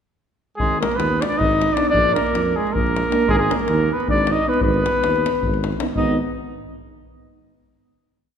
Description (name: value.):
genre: balkan folk, Balkan brass band.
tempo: 312 BPM (eighths).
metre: 7/8.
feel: straight.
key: unclear.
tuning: A4 = 442 Hz.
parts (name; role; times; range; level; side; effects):
clear flugelhorn; melody; 0.6-6.2 s; Ab4 to Eb5; -21 LUFS; left 1 dB; none.
warm alto saxophone; second line; 0.6-6.2 s; Ab3 to Eb4; -25 LUFS; right 3 dB; none.
dark tuba; bass; 0.6-6.2 s; Ab1 to F2; -24 LUFS; equal; none.
davul; percussion; 0.6-6.2 s; none; -25 LUFS; left 2 dB; none.
mellow French horn; accompaniment; 1.8-6.2 s; D4 to Eb4; -30 LUFS; left 6 dB; none.
mellow euphonium; accompaniment; 1.8-6.2 s; Bb3 to Cb4; -28 LUFS; right 4 dB; none.
room: wet concert hall reverb, RT60 2.2 s.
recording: minimal, uncompressed stereo recording.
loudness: -17 LUFS.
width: side -8 dB against mid.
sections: 0.6-6.0 A section; 6.0-7.3 final chord.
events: none.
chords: 0.6 Abm; 1.9 Bb; 3.3 Abm.